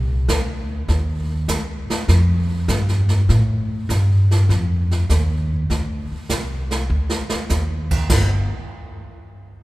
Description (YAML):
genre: jazz piano trio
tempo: 100 BPM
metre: 4/4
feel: swing 69% on 8ths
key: unclear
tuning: A4 = 439 Hz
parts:
  - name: upright bass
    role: bass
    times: 0.0-8.5 s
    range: G1 to A2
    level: -18 LUFS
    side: equal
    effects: none
  - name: jazz brush drum kit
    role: drums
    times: 0.3-8.3 s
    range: brushed snare drum, crash cymbal, hi-hat, kick drum, snare drum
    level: -24 LUFS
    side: right 1 dB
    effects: none
room: wet church reverb, RT60 3.2 s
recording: recorded in a church or concert hall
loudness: -17 LUFS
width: side -18 dB against mid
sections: 0.0-8.1 A section; 8.1-9.6 B section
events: drum fill 6.9-7.5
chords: none